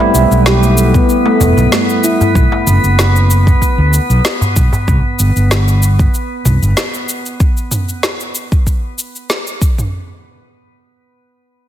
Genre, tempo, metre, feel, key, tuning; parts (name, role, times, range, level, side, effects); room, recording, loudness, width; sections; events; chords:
organic downtempo; 95 BPM; 4/4; swing 54% on 16ths; A4 = 441 Hz
tine electric piano; accompaniment; 0.0-2.4 s; G3 to E4; -16 LUFS; right 1 dB; fast stereo tremolo, sidechain pumping, low-pass filter, ping-pong delay
darbuka; percussion; 0.0-4.8 s; -19 LUFS; equal
drifting glass-harmonics texture; texture; 0.2-7.4 s; B3 to B4; -20 LUFS; right 1 dB; chorus, built-in reverb
handpan; arpeggios; 0.1-2.3 s; A3 to G4; -15 LUFS; left 1 dB; low-pass filter, ping-pong delay
fretless electric bass; bass; 0.1-6.7 s; E1 to D2; -11 LUFS; equal; tube saturation
deep house drum kit; drums; 0.1-9.9 s; shaker, snare drum, toms; -18 LUFS; equal
electronic kick drum; drums; 0.9-9.8 s; -13 LUFS; equal
light reverb, digital ambience; dense, heavily limited modern master; -10 LUFS; side -11 dB against mid
0.0-9.9 A section
filter sweep on handpan 0.0-2.4; filter sweep on tine electric piano 0.0-2.4
0.0 Em; 2.4 B5; 4.9 N.C.